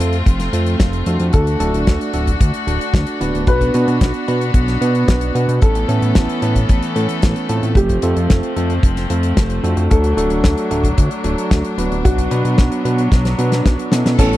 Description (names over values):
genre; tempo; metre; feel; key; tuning
italo disco; 112 BPM; 4/4; straight; unclear; A4 = 441 Hz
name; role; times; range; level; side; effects
clear chamber string section; sustained chords; 0.0-14.4 s; E3 to A4; -23 LUFS; left 1 dB; none
bell-like tine electric piano; stabs; 0.0-14.4 s; A3 to B4; -22 LUFS; right 2 dB; tape echo
fat analog bass; bass; 0.0-14.4 s; D1 to B2; -18 LUFS; equal; none
damped 70s drum kit; drums; 0.0-14.4 s; crash cymbal, hi-hat, snare drum; -22 LUFS; left 2 dB; none
kick drum; drums; 0.3-14.3 s; none; -14 LUFS; equal; none
dark grand piano; melody; 1.3-14.4 s; C#4 to B4; -22 LUFS; left 1 dB; tape echo
room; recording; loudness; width
studio reverb; dry, close 1970s-style studio recording; -14 LUFS; side -15 dB against mid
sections
0.0-14.2 A section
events
drum fill 13.1-14.2; band accent 14.1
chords
0.0 F; 1.3 D; 3.5 Bm; 5.6 Aadd9; 7.8 F; 9.9 D; 12.0 Bm